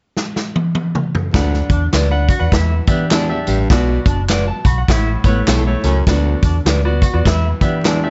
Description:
uptempo 1960s-style soul; 102 BPM; 4/4; swing 61% on 8ths; D major; A4 = 436 Hz
swinging big-band drum kit; drums; 0.2-8.0 s; hi-hat, kick drum, snare drum, toms; -19 LUFS; equal
bright grand piano; accompaniment; 1.3-8.1 s; A2 to B5; -25 LUFS; equal
breathy baritone saxophone; riff; 1.3-8.1 s; D2 to B2; -25 LUFS; equal
vintage muted fingered electric bass; bass; 1.3-8.0 s; F#1 to E3; -20 LUFS; equal
tambourine and handclaps; percussion; 1.3-8.0 s; -29 LUFS; equal
electric guitar through a small old amp; riff; 1.7-8.1 s; B3 to F#4; -28 LUFS; equal; lush chorus
electric guitar through a small old amp; stabs; 1.9-8.0 s; E4 to D5; -26 LUFS; equal
small room ambience; nothing above 7.7 kHz; -16 LUFS; mono
0.0-1.3 A section; 1.3-8.1 B section
drum fill 0.2-1.3
0.0 N.C.; 1.3 D6; 2.5 Em7; 3.7 Bm; 4.9 A; 6.1 D6; 7.3 Em7

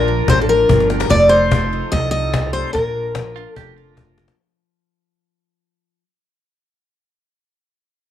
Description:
honky-tonk and classic country; 146 BPM; 4/4; straight; Bb major; A4 = 440 Hz
picked steel-string acoustic guitar; melody; 0.0-3.9 s; A4 to Eb5; -16 LUFS; left 1 dB
bright tonewheel organ; accompaniment; 0.0-4.4 s; D4 to Bb4; -27 LUFS; right 14 dB; slow rotary speaker
picked steel-string acoustic guitar; accompaniment; 0.0-6.0 s; Bb2 to Bb4; -26 LUFS; left 12 dB
upright bass; bass; 0.0-4.2 s; F1 to C2; -21 LUFS; right 2 dB
cajon; drums; 0.1-4.4 s; -20 LUFS; left 2 dB
pedal steel guitar; second line; 3.4-4.0 s; F4 to G4; -42 LUFS; right 16 dB
light reverb, small room ambience; 1960s-style stereo with parts hard left and right; -13 LUFS; side -11 dB against mid
0.0-1.1 A section; 1.1-4.4 B section
drum fill 0.7-1.1, 4.0-4.4; fade-out 1.1-4.4
0.0 Bb; 1.1 F7; 2.7 Bb

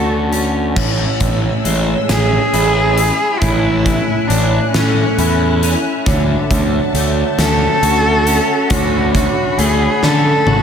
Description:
post-rock; 45 BPM (dotted quarters); 6/8; straight; A major; A4 = 441 Hz
clear cello; melody; 0.0-10.6 s; C#4 to A4; -18 LUFS; equal; analog delay
electric guitar at the edge of break-up; arpeggios; 0.0-10.6 s; A2 to F#4; -20 LUFS; left 2 dB; ensemble chorus, analog delay
vibraphone with medium mallets; arpeggios; 0.0-10.6 s; G#4 to C#5; -22 LUFS; right 6 dB; analog delay
fuzz picked electric bass; bass; 0.0-10.6 s; G#1 to D3; -17 LUFS; equal; overdrive
huge arena drum kit; drums; 0.3-10.6 s; crash cymbal, hi-hat, kick drum, snare drum, toms; -20 LUFS; equal
warm symphonic string section; sustained chords; 0.8-10.6 s; E5 to F#6; -26 LUFS; left 4 dB
moderate lush hall reverb, RT60 2.7 s; dreamy mix soaked in reverb; -12 LUFS; side -7 dB against mid
0.8-10.6 A section
drum fill 10.0-10.6
0.0 Dmaj7; 0.8 Amaj7; 6.1 Dmaj7

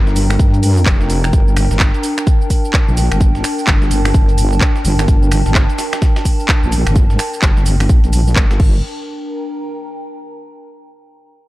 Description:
bass house; 128 BPM; 4/4; swing 61% on 16ths; G minor; A4 = 440 Hz
wobble bass; bass; 0.0-8.8 s; F1 to G2; -14 LUFS; equal; chorus, tube saturation, sidechain pumping
warbly tape-like pad; texture; 0.0-10.7 s; D4 to Bb5; -22 LUFS; equal; chorus, built-in reverb, sidechain pumping
dusty soul sampler-style drum kit; drums; 0.1-8.6 s; hi-hat, snare drum; -31 LUFS; equal
house drum kit; drums; 0.1-8.7 s; crash cymbal, finger snaps, handclaps, hi-hat, shaker; -21 LUFS; right 1 dB
electronic kick drum; drums; 0.4-8.7 s; -13 LUFS; equal
little or no reverb; dark, warm production; -11 LUFS; side -17 dB against mid
0.0-8.8 A section; 8.8-10.7 B section
filter sweep on wobble bass 0.0-8.8
0.0 Gm

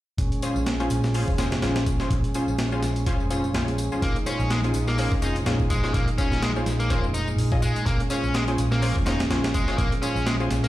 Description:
breakbeat, breaks; 125 BPM; 4/4; swing 56% on 16ths; A4 = 440 Hz
tonewheel organ; sustained chords; 0.2-10.7 s; Bb2 to Eb4; -29 LUFS; right 1 dB; chorus vibrato, sidechain pumping
overdriven picked electric bass; bass; 0.2-10.7 s; F1 to Bb1; -26 LUFS; equal
breakbeat sampler-style drum kit; drums; 0.2-10.7 s; hi-hat, kick drum, snare drum; -27 LUFS; equal
tambourine; drums; 0.2-10.7 s; -42 LUFS; left 5 dB; overdrive
orchestra-hit-like synth stab; stabs; 0.4-10.5 s; Db4 to Eb5; -30 LUFS; left 1 dB; built-in reverb, ping-pong delay
overdriven electric guitar; riff; 4.0-10.7 s; Ab3 to Eb4; -29 LUFS; left 1 dB; vintage 12-bit sampler grit, ping-pong delay
moderate digital room reverb, RT60 0.9 s; played on a big sound system in a bare room, stone room reverb; -21 LUFS; side -15 dB against mid
0.2-10.7 A section
0.2 Bbm7

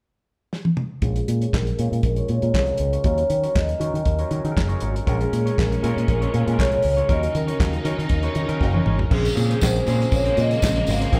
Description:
disco; 119 BPM; 4/4; straight; Bb minor; A4 = 440 Hz
warm soul drum kit; drums; 0.5-11.2 s; crash cymbal, handclaps, hi-hat, kick drum, snare drum, toms; -26 LUFS; equal
vibraphone with soft mallets; melody; 1.0-11.2 s; Ab4 to F5; -28 LUFS; equal; low-pass filter
barky tine electric piano; accompaniment; 1.0-11.2 s; F3 to Eb5; -34 LUFS; equal; low-pass filter
electric guitar through a small old amp; accompaniment; 1.0-11.2 s; Db4 to Db5; -37 LUFS; equal; low-pass filter
fingered electric bass with an envelope filter; bass; 1.0-11.2 s; Gb1 to Eb3; -25 LUFS; equal
rich studio string section; sustained chords; 5.1-11.2 s; Bb2 to Eb4; -32 LUFS; equal; low-pass filter
tambourine; percussion; 9.3-11.1 s; -37 LUFS; equal
moderate large studio reverb, RT60 1.1 s; band playing live in one room; -21 LUFS; mono
0.0-1.0 A section; 1.0-9.1 B section; 9.1-11.2 C section
drum fill 0.5-1.0, 8.6-9.1; filter sweep 1.0-9.1
0.0 N.C.; 1.0 Bbm7; 3.0 Ebm7; 5.1 Bbm7; 7.1 Ebm7; 9.1 Bbm9

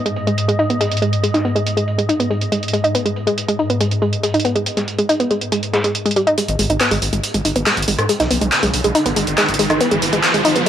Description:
driving peak-time techno; 140 BPM; 4/4; straight; G# minor; A4 = 439 Hz
swarming drone; drone; 0.0-6.4 s; G#2; -23 LUFS; equal; built-in reverb
analog pluck; riff; 0.1-10.7 s; G3 to D#4; -18 LUFS; equal; chorus, tube saturation, cassette tape, tape echo
techno drum kit; drums; 0.1-10.7 s; handclaps, hi-hat, rim click; -20 LUFS; right 1 dB; high-pass filter on hats, low-pass filter on hats, high-pass filter on snare, low-pass filter on snare, high-pass filter on room, low-pass filter on room
breakbeat sampler-style drum kit; drums; 0.2-10.7 s; hi-hat, snare drum; -28 LUFS; equal; high-pass filter on hats, low-pass filter on hats, high-pass filter on snare, low-pass filter on snare
riser; sound effects; 7.6-10.7 s; -22 LUFS; right 2 dB
gritty driven synth bass; bass; 6.5-10.6 s; G#1 to G#2; -23 LUFS; equal
light reverb; dry, gritty hardware recording, high-pass filter; -15 LUFS; side -10 dB against mid
0.0-6.4 A section; 6.4-10.7 B section
build-up 6.4-10.7; riser 7.6-10.7
0.0 G#5

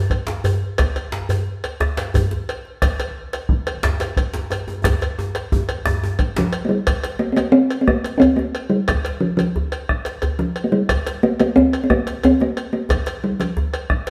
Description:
west african traditional, West African drum ensemble; 119 BPM (dotted quarters); 12/8; straight; A4 = 440 Hz
bombo; percussion; 0.1-14.1 s; -25 LUFS; equal
cowbell; percussion; 0.1-14.1 s; -30 LUFS; equal
djembe; percussion; 0.3-14.1 s; -28 LUFS; equal
djembe; percussion; 0.3-6.5 s; -25 LUFS; equal
talking drum; melody; 6.4-14.1 s; F3 to D4; -19 LUFS; equal
wet stone room reverb, RT60 1.2 s; band playing live in one room; -20 LUFS; mono
0.0-6.9 A section; 6.9-14.1 B section
drum fill 4.8-6.9

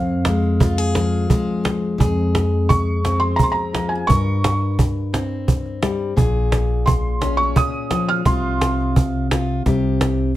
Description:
acoustic folk duo or small band; 86 BPM; 3/4; straight; F minor; A4 = 443 Hz
felt-muted upright piano; melody; 0.0-8.9 s; F5 to F6; -23 LUFS; right 2 dB
fingerpicked plugged-in steel-string acoustic guitar; accompaniment; 0.0-10.3 s; F2 to Bb4; -22 LUFS; left 2 dB
upright bass; bass; 0.0-10.3 s; Bb1 to G2; -21 LUFS; equal
cajon; percussion; 0.2-10.2 s; -19 LUFS; right 1 dB
moderate studio reverb, RT60 0.6 s; -17 LUFS; side -14 dB against mid
0.0-2.0 A section; 2.0-10.4 A section
0.0 Fm; 4.1 Gdim; 6.2 Bbm7; 8.3 Csus4; 9.7 C5

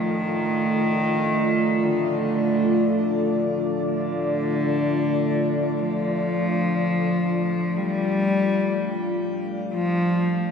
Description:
dark ambient drone; free time; D phrygian; A4 = 440 Hz
rich cello; melody; 0.0-10.5 s; D3 to G3; -24 LUFS; left 2 dB; shimmer reverb, ping-pong delay
deep dark ambient pad; sustained chords; 0.0-10.5 s; A3 to F5; -23 LUFS; equal; chorus, built-in reverb, shimmer reverb
wet cathedral reverb, RT60 6.5 s; in a vast, echoing space, faint mains hum; -20 LUFS; side -6 dB against mid
0.0-10.5 A section
0.0 Dm

